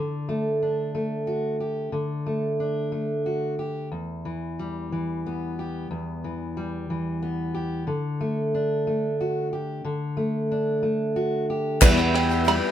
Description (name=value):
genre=indie folk with a building arrangement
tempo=61 BPM (dotted quarters)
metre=6/8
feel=straight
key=unclear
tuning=A4 = 439 Hz
part: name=fingerpicked steel-string acoustic guitar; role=accompaniment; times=0.0-11.8 s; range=E2 to G4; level=-25 LUFS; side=equal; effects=none
part: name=dark upright piano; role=accompaniment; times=11.8-12.7 s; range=E2 to E5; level=-30 LUFS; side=right 7 dB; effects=none
part: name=picked steel-string acoustic guitar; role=accompaniment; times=11.8-12.7 s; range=E2 to G4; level=-25 LUFS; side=left 5 dB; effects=none
part: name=hand-pumped harmonium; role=sustained chords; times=11.8-12.7 s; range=E3 to G5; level=-29 LUFS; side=equal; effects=none
part: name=open-back banjo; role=arpeggios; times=11.8-12.7 s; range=B4 to B5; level=-25 LUFS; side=right 6 dB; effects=none
part: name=picked electric bass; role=bass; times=11.8-12.6 s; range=E2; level=-23 LUFS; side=equal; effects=none
part: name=cloth-damped thuddy drum kit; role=drums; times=11.8-12.6 s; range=crash cymbal, kick drum, ride cymbal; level=-21 LUFS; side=equal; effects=none
part: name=group handclap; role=percussion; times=11.8-12.2 s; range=none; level=-24 LUFS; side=left 6 dB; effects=none
part: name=tambourine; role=percussion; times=11.8-12.4 s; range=none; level=-33 LUFS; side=right 7 dB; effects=none
room=light reverb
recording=band playing live in one room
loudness=-24 LUFS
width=side -10 dB against mid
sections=0.0-11.8 A section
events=none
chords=0.0 D; 3.9 Em; 7.9 D; 11.8 Em